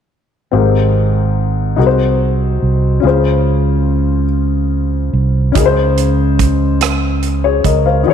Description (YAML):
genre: slow gospel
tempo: 48 BPM (dotted quarters)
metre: 6/8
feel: straight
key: unclear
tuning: A4 = 440 Hz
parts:
  - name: warm upright piano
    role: accompaniment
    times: 0.5-8.1 s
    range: Ab2 to F5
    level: -15 LUFS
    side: left 8 dB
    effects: none
  - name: fingered electric bass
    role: bass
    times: 0.5-8.0 s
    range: Ab1 to Db2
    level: -14 LUFS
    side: right 2 dB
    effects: none
  - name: modern studio drum kit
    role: drums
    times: 5.6-7.8 s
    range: hi-hat, kick drum, rim click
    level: -17 LUFS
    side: right 5 dB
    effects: none
room: light reverb, small room ambience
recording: 1960s-style stereo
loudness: -11 LUFS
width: side -8 dB against mid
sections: 0.5-8.1 A section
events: none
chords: 0.5 Abmaj9; 1.8 Ab7/C; 3.0 Dbmaj7; 5.6 Dbmaj7sus2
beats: | 0.53 1.78 | 3.04 4.30 | 5.55 6.81 | 8.06